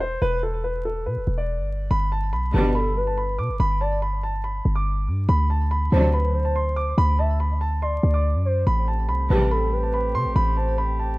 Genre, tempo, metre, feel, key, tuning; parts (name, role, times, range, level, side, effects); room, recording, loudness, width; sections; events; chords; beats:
hip hop; 142 BPM; 4/4; half-time; A4 = 440 Hz
dark concert grand piano; melody; 0.0-11.2 s; A4 to D6; -27 LUFS; right 1 dB; low-pass filter, digital delay
warm 808-style bass; bass; 0.0-11.2 s; E1 to C3; -22 LUFS; equal
gliding portamento lead; second line; 2.5-10.8 s; A4 to E5; -28 LUFS; equal; chorus, digital delay
warm symphonic string section; stabs; 2.5-2.9, 5.9-6.3, 9.3-9.7 s; B2 to G3; -26 LUFS; equal
mellow brass ensemble; sustained chords; 8.7-11.2 s; A3 to G4; -34 LUFS; equal
little or no reverb; rough home demo mix, vinyl crackle; -20 LUFS; side -21 dB against mid
0.0-1.9 A section; 1.9-11.2 B section
0.0 Em; 1.9 G; 5.3 D7; 8.7 Am7
| 0.22 0.64 1.06 1.49 | 1.91 2.33 2.75 3.17 | 3.60 4.02 4.44 4.87 | 5.29 5.71 6.13 6.55 | 6.98 7.40 7.82 8.24 | 8.67 9.09 9.51 9.94 | 10.36 10.78